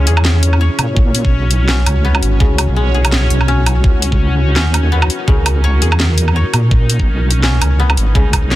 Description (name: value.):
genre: half-time drum and bass.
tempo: 167 BPM.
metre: 4/4.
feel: swing 56% on 16ths, half-time.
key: C# dorian.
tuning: A4 = 440 Hz.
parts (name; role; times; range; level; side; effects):
dark analog pad; sustained chords; 0.0-8.6 s; C#4 to C#5; -24 LUFS; left 1 dB; chorus, sidechain pumping.
koto; arpeggios; 0.0-8.6 s; C#3 to C#5; -23 LUFS; left 4 dB; tape echo.
deep soft wobble bass; bass; 0.0-8.6 s; G#1 to A#2; -13 LUFS; equal; chorus.
backwards swelling texture; texture; 0.0-8.6 s; C#4 to C#5; -24 LUFS; right 1 dB; built-in reverb.
drum and bass drum kit; drums; 0.1-8.6 s; hi-hat, snare drum, woodblock; -18 LUFS; right 1 dB; none.
electronic kick drum; drums; 1.0-8.4 s; none; -13 LUFS; equal; none.
room: digital ambience.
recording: dense, heavily limited modern master.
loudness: -11 LUFS.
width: side -15 dB against mid.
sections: 0.0-8.6 A section.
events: none.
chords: 0.0 C#m.